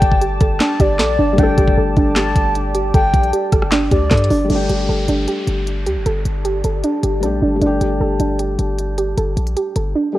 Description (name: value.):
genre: hip hop, trap.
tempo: 154 BPM.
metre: 4/4.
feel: half-time.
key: unclear.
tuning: A4 = 438 Hz.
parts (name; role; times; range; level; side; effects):
breathy flute-like synth lead; second line; 0.0-4.5 s; D5 to A5; -21 LUFS; left 2 dB; chorus, phaser, digital delay.
felt-muted upright piano; accompaniment; 0.0-10.2 s; G3 to A4; -23 LUFS; left 3 dB; none.
deep dark ambient pad; sustained chords; 0.0-10.2 s; G4 to A5; -27 LUFS; right 1 dB; chorus, built-in reverb.
soft round pluck; arpeggios; 0.0-10.2 s; D4 to A4; -20 LUFS; right 3 dB; chorus, digital delay.
warm 808-style bass; bass; 0.0-9.9 s; G1 to G2; -20 LUFS; equal; none.
trap drum kit; drums; 0.0-9.8 s; handclaps, hi-hat, kick drum, rim click, snare drum; -17 LUFS; equal; none.
downlifter; sound effects; 4.5-7.6 s; none; -32 LUFS; equal; none.
room: light reverb, digital ambience.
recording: worn, warbling old tape, cassette tape, warbly pitch drift.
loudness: -14 LUFS.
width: side -15 dB against mid.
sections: 0.0-4.5 A section; 4.5-10.2 B section.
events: none.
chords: 0.0 Gsus2.